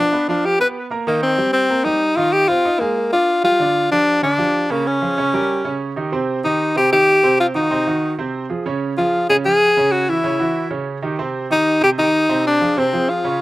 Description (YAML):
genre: latin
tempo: 190 BPM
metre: 4/4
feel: straight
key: C minor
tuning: A4 = 440 Hz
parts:
  - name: clear tenor saxophone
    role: melody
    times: 0.0-13.4 s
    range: Bb3 to B4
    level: -15 LUFS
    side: left 1 dB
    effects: slapback echo
  - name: clear concert grand piano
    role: accompaniment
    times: 0.0-13.4 s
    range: C3 to Eb6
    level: -22 LUFS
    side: right 4 dB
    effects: none
room: little or no reverb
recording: recorded outdoors, with no room sound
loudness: -15 LUFS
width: side -17 dB against mid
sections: 0.0-3.6 A section; 3.6-13.4 B section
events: none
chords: 0.0 Bdim; 1.1 Cm7; 2.3 Fm7; 3.0 Gm7; 3.6 G5; 4.9 Bbm7; 5.5 Eb7; 6.1 Cm; 7.4 Ab6 (rootless); 8.7 Db; 9.9 F#5; 11.2 Cm; 12.5 Dm7b5